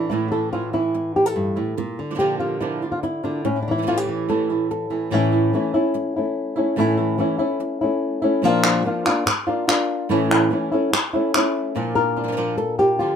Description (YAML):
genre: flamenco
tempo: 144 BPM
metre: 4/4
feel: straight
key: A phrygian dominant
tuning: A4 = 442 Hz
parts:
  - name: flamenco guitar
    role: melody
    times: 0.0-13.2 s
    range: G2 to Bb4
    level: -20 LUFS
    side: left 2 dB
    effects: none
  - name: flamenco guitar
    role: stabs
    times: 0.0-13.2 s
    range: A2 to F4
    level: -25 LUFS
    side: right 7 dB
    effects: none
  - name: palmas hand claps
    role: percussion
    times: 8.6-11.5 s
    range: none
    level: -21 LUFS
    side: left 1 dB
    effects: none
room: light reverb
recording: minimal, uncompressed stereo recording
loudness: -19 LUFS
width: side -8 dB against mid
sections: 0.0-5.1 A section; 5.1-11.8 B section; 11.8-13.2 C section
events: none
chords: 0.0 A; 1.8 Bb; 3.5 A; 8.4 Bb; 10.1 A; 11.8 Bb